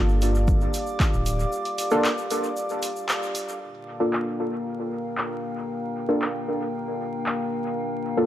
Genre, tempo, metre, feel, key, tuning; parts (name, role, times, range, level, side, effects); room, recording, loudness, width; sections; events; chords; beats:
dub techno; 115 BPM; 4/4; straight; G minor; A4 = 443 Hz
dark analog pad; sustained chords; 0.0-8.3 s; Bb3 to D6; -32 LUFS; right 1 dB; chorus, sidechain pumping
deep mellow chord stab; stabs; 0.0-8.3 s; Bb3 to A4; -27 LUFS; equal; chorus, phaser, cassette tape, dub echo
soft dub sub bass; bass; 0.0-1.4 s; D1 to G1; -23 LUFS; equal; sidechain pumping
drifting glass-harmonics texture; texture; 0.3-8.3 s; Bb3 to D5; -33 LUFS; left 3 dB; chorus, built-in reverb, sidechain pumping
egg shaker; percussion; 0.1-3.6 s; -39 LUFS; left 2 dB
punchy analog drum machine; drums; 0.2-7.4 s; handclaps, hi-hat; -30 LUFS; equal; low-pass filter on hats, small room ambience, low-pass filter on snare, dub echo
electronic kick drum; drums; 0.5-1.1 s; -23 LUFS; equal; overdrive, small room ambience
light reverb, digital ambience; dry, gritty hardware recording, transformer saturation, vinyl crackle; -23 LUFS; side -12 dB against mid
0.0-3.6 A section; 3.6-8.3 B section
break 1.5-3.6; band accent 3.1
0.0 Gm7
0.48 1.00 | 1.52 2.04 2.56 3.09 | 3.61 4.13 4.65 5.17 | 5.70 6.22 6.74 7.26 | 7.78